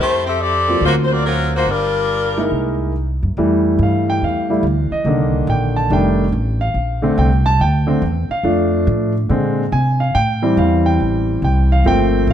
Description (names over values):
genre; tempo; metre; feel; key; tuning
jazz, big band swing; 142 BPM; 4/4; swing 66% on 8ths; F major; A4 = 439 Hz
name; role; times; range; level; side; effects
bright saxophone section; melody; 0.0-3.0 s; F#3 to E5; -17 LUFS; left 2 dB; none
upright bass; bass; 0.0-12.3 s; F1 to C3; -18 LUFS; equal; none
clear grand piano; accompaniment; 0.7-12.3 s; D3 to A5; -17 LUFS; equal; none
room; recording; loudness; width
moderate large studio reverb, RT60 1.3 s; dark, warm production; -14 LUFS; side -10 dB against mid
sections
0.0-3.4 A section; 3.4-12.3 B section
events
grand piano solo 3.4-12.3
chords
0.0 Fmaj9; 0.8 D7alt; 1.7 Gm7; 2.5 C7alt; 3.4 Fmaj9; 5.1 Cm9; 5.9 F13; 6.8 Bbmaj7; 8.5 F6; 9.3 Bb9; 10.2 Am7